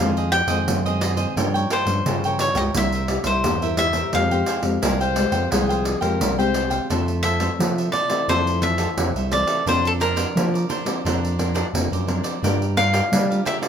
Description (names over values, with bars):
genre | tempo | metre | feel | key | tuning
samba and choro | 87 BPM | 4/4 | straight | F minor, F major from 6.9 s | A4 = 439 Hz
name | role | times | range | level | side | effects
cavaquinho | melody | 0.0-13.6 s | A4 to G5 | -23 LUFS | left 1 dB | none
cavaquinho | accompaniment | 0.0-13.7 s | D4 to G5 | -28 LUFS | right 3 dB | none
nylon-string guitar | accompaniment | 0.0-13.7 s | F2 to Bb4 | -28 LUFS | left 4 dB | none
growling FM bass | bass | 0.0-13.4 s | C2 to G3 | -24 LUFS | equal | none
pandeiro | percussion | 0.2-13.7 s | none | -25 LUFS | right 1 dB | none
clear clarinet | second line | 4.8-6.9 s | Ab4 to C5 | -26 LUFS | left 6 dB | none
room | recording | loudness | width
moderate studio reverb, RT60 0.9 s | minimal, uncompressed stereo recording | -19 LUFS | side -8 dB against mid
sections
0.0-6.9 A section; 6.9-13.7 B section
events
none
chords
0.0 Fm7; 1.4 Gm7b5; 2.8 C7; 4.1 Fmadd9; 6.9 Fmaj7; 9.7 Bbadd9/F; 12.4 Gm7